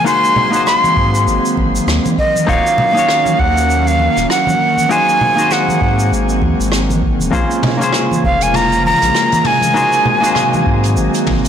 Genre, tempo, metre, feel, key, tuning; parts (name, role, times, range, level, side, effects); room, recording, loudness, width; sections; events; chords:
sunset chillout; 99 BPM; 4/4; swing 58% on 16ths; A4 = 438 Hz
breathy bright jazz flute; melody; 0.0-10.7 s; Eb5 to C6; -14 LUFS; equal; digital delay, shimmer reverb
semi-hollow electric guitar; accompaniment; 0.0-11.5 s; Bb3 to Db5; -19 LUFS; equal; auto-pan, digital delay, shimmer reverb
airy breathy pad; sustained chords; 0.0-11.5 s; Db3 to F4; -20 LUFS; equal; chorus, shimmer reverb
jazz brush drum kit; drums; 0.1-11.5 s; hi-hat, rim click, shaker, toms; -22 LUFS; right 1 dB
congas; percussion; 0.4-11.4 s; -22 LUFS; equal
round analog bass; bass; 1.0-11.5 s; Eb1 to Ab2; -18 LUFS; equal
electronic kick drum; drums; 1.0-11.4 s; -20 LUFS; equal
moderate plate reverb, RT60 1.8 s, studio reverb; blown-out, overdriven recording, overdrive; -11 LUFS; side -8 dB against mid
0.0-11.5 A section
0.1 Ab7; 2.2 Ebm7; 4.9 Ab7; 7.3 Bbm7; 9.8 Ab7